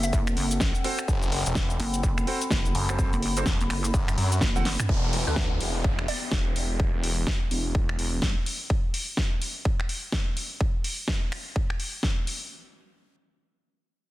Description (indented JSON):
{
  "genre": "bass house",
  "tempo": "126 BPM",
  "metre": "4/4",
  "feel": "swing 60% on 16ths",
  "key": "E minor",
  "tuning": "A4 = 444 Hz",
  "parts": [
    { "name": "glassy wavetable pluck", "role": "melody", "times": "0.0-0.1, 5.3-6.8 s", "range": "B4 to E5", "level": "-37 LUFS", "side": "equal", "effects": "chorus, dub echo" },
    { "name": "pulsing pluck wobble bass", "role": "bass", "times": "0.0-4.8 s", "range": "F#1 to A1", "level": "-27 LUFS", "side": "equal", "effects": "chorus, sidechain pumping" },
    { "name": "big-room dance drum kit", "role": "drums", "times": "0.0-12.4 s", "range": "finger snaps, hi-hat, shaker, snare drum, toms", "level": "-30 LUFS", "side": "equal", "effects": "studio reverb, soft clipping on snare" },
    { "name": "warbly tape-like pad", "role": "texture", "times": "0.0-8.7 s", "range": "B3 to B5", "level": "-37 LUFS", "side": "left 2 dB", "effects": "chorus, built-in reverb, sidechain pumping" },
    { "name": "electronic kick drum", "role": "drums", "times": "0.1-12.1 s", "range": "none", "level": "-26 LUFS", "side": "equal", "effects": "studio reverb" },
    { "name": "bright grand piano", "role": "stabs", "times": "0.8-4.7 s", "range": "C4 to F#5", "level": "-36 LUFS", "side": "right 4 dB", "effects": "sidechain pumping, dub echo" },
    { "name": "phased detuned saw bass", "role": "bass", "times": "1.1-8.3 s", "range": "E1 to F#2", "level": "-28 LUFS", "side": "equal", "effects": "phaser, tube saturation, sidechain pumping" },
    { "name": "downlifter", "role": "sound effects", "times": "4.9-8.7 s", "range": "none", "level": "-37 LUFS", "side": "equal", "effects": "none" }
  ],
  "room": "little or no reverb",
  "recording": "dense, heavily limited modern master",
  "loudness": "-24 LUFS",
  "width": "side -16 dB against mid",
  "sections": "0.0-4.9 A section; 4.9-12.5 B section",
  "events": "drop 0.0-4.9; drum fill 4.5-4.9; filter sweep on detuned saw bass 4.9-8.7",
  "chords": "0.0 F#dim; 4.9 Em",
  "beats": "0.13 0.60 | 1.08 1.56 2.03 2.51 | 2.99 3.46 3.94 4.42 | 4.89 5.37 5.84 6.32 | 6.80 7.27 7.75 8.22 | 8.70 9.18 9.65 10.13 | 10.61 11.08 11.56 12.03"
}